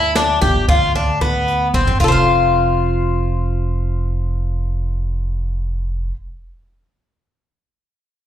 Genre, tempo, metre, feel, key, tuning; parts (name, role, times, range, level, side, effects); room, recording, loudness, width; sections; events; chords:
progressive instrumental, band music in an uneven meter; 227 BPM (eighths); 5/8; straight; A4 = 440 Hz
picked twelve-string acoustic guitar; arpeggios; 0.0-6.2 s; B3 to F5; -17 LUFS; left 2 dB; slapback echo
upright bass; bass; 0.0-6.1 s; F1 to D2; -19 LUFS; equal
jazz brush drum kit; drums; 0.2-2.1 s; hi-hat, kick drum, ride cymbal, snare drum, toms; -21 LUFS; equal
light reverb; live gig heard through the venue's PA, club reverb; -15 LUFS; side -10 dB against mid
0.0-2.0 A section; 2.0-4.6 B section
drum fill 1.7
0.0 G; 2.0 F5